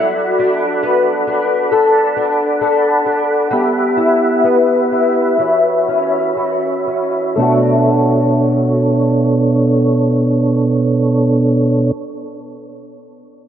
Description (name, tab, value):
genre	dream pop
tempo	59-69 BPM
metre	4/4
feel	straight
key	B minor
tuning	A4 = 441 Hz
part	percussive tonewheel organ	sustained chords	0.0-11.9 s	B2 to B5	-14 LUFS	right 2 dB	chorus vibrato, slow rotary speaker, low-pass filter
part	picked twelve-string acoustic guitar	arpeggios	0.0-12.0 s	E3 to A4	-16 LUFS	left 3 dB	ensemble chorus, low-pass filter, tape echo
room	wet huge ambient reverb, RT60 4.9 s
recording	none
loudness	-12 LUFS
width	side -9 dB against mid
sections	0.0-7.4 A section; 7.4-11.5 B section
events	slowing down 0.0-7.4; filter sweep 0.0-7.4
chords	0.0 Bm7; 3.5 Emadd9; 5.4 F#7sus4; 7.4 Bm7